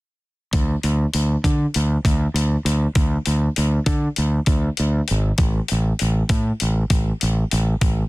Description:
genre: rock, shoegaze and dream pop.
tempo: 99 BPM.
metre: 4/4.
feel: straight.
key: unclear.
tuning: A4 = 441 Hz.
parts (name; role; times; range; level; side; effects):
growling fingered electric bass; bass; 0.5-8.0 s; G#1 to D3; -19 LUFS; equal; overdrive.
crisp 8-bit digital drum machine; drums; 0.5-8.0 s; hi-hat, kick drum; -22 LUFS; equal; none.
room: little or no reverb.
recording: dense, heavily limited modern master.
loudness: -18 LUFS.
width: side -20 dB against mid.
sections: 0.5-8.1 A section.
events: none.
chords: none.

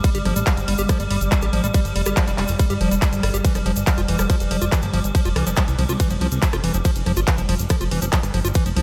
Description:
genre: psychedelic trance.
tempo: 141 BPM.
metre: 4/4.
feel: straight.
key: unclear.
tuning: A4 = 444 Hz.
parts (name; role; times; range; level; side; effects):
swarming drone; sustained chords; 0.0-8.8 s; G3; -30 LUFS; equal; built-in reverb, sidechain pumping.
overdriven acid bass; riff; 0.0-8.8 s; E3 to G4; -28 LUFS; equal; sidechain pumping, diffuse ambient delay.
big-room dance drum kit; drums; 0.0-8.8 s; handclaps, hi-hat, ride cymbal, rim click; -30 LUFS; equal; none.
electronic kick drum; drums; 0.0-8.6 s; none; -22 LUFS; equal; none.
egg shaker; percussion; 0.0-8.7 s; none; -36 LUFS; equal; none.
plucky analog bass; bass; 0.1-8.8 s; F1 to C2; -25 LUFS; equal; none.
room: light reverb.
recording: none.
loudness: -20 LUFS.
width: mono.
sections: 0.0-8.8 A section.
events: none.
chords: 0.0 Fsus2; 3.4 F5.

